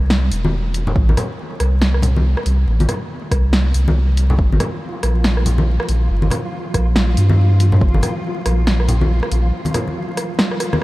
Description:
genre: deep dubstep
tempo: 140 BPM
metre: 4/4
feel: swing 59% on 16ths, half-time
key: unclear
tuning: A4 = 440 Hz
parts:
  - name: saturated sub bass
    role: bass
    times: 0.0-9.5 s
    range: E1 to G2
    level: -15 LUFS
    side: equal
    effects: none
  - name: deep house drum kit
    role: drums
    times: 0.1-10.8 s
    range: hi-hat, rim click, snare drum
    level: -23 LUFS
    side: right 1 dB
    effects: overdrive
  - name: congas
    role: percussion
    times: 0.4-10.8 s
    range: none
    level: -23 LUFS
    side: left 1 dB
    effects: dub echo
  - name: electronic kick drum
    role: drums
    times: 1.0-7.9 s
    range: none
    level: -17 LUFS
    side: equal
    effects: overdrive
  - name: flickering grainy texture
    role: texture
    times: 4.7-10.8 s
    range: F3 to F4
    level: -26 LUFS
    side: equal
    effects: built-in reverb
room: light reverb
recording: vinyl crackle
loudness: -14 LUFS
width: side -18 dB against mid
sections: 0.0-10.8 A section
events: break 9.5-10.8; drum fill 10.4-10.8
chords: 0.0 Am (rootless); 4.4 Gm7

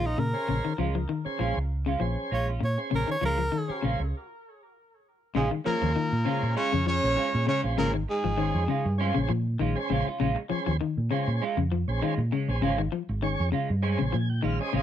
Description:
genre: afrobeat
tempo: 99 BPM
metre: 4/4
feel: swing 54% on 16ths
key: Bb minor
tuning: A4 = 436 Hz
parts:
  - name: clear tenor saxophone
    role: melody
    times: 0.0-3.8 s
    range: Eb4 to Db5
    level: -32 LUFS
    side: equal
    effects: tape echo
  - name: electric guitar at the edge of break-up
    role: arpeggios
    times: 0.0-14.8 s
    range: Db3 to F3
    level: -30 LUFS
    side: left 7 dB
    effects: none
  - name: semi-hollow electric guitar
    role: stabs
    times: 0.0-14.8 s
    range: Ab3 to F4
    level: -33 LUFS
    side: right 6 dB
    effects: analog chorus
  - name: hollow-body short-scale fingered electric bass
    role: bass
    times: 0.0-14.8 s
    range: Ab1 to Bb2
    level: -28 LUFS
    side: right 1 dB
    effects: none
  - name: tonewheel organ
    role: accompaniment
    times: 0.3-14.8 s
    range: Db4 to Ab5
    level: -33 LUFS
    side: right 3 dB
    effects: slow rotary speaker
  - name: warm trumpet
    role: melody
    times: 5.4-9.0 s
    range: Ab4 to Db5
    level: -29 LUFS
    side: right 1 dB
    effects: none
  - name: bright baritone saxophone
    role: second line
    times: 5.4-9.0 s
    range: Ab2 to Db3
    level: -37 LUFS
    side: left 7 dB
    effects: none
  - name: warm alto saxophone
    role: second line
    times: 5.4-9.0 s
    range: Ab3 to Db4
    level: -34 LUFS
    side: right 4 dB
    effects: none
room: light reverb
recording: dry, close 1970s-style studio recording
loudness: -25 LUFS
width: side -10 dB against mid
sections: 0.0-5.3 A section; 5.3-14.8 B section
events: tenor saxophone solo 0.0-5.3; stop 4.1-5.3; tonewheel organ fill 13.8-14.8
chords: 0.0 Bbm7

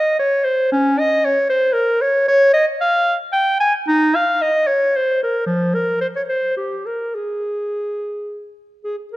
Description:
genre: classical, baroque-style fantasia for unaccompanied clarinet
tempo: 103-116 BPM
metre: 3/4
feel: rubato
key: Ab major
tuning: A4 = 438 Hz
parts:
  - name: clear clarinet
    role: solo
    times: 0.0-9.2 s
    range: F3 to Ab5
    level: -16 LUFS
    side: equal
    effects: none
room: wet recital hall reverb, RT60 1.6 s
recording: dark, warm production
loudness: -15 LUFS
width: side -17 dB against mid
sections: 0.0-8.8 A section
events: none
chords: none

